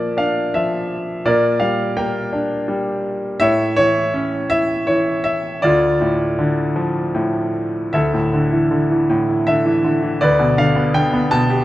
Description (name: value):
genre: classical, lyrical solo piano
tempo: 76-86 BPM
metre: 3/4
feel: rubato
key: D minor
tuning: A4 = 440 Hz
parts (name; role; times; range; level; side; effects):
- bright grand piano; solo; 0.0-11.6 s; D2 to A5; -16 LUFS; equal; none
room: moderate scoring stage reverb, RT60 1.6 s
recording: faint mains hum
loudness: -16 LUFS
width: side -15 dB against mid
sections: 0.0-7.9 A section; 7.9-11.6 B section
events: none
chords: 0.0 Bb; 1.3 Gm/Bb; 3.4 A; 5.6 Dm; 7.9 Dsus2; 10.2 G/D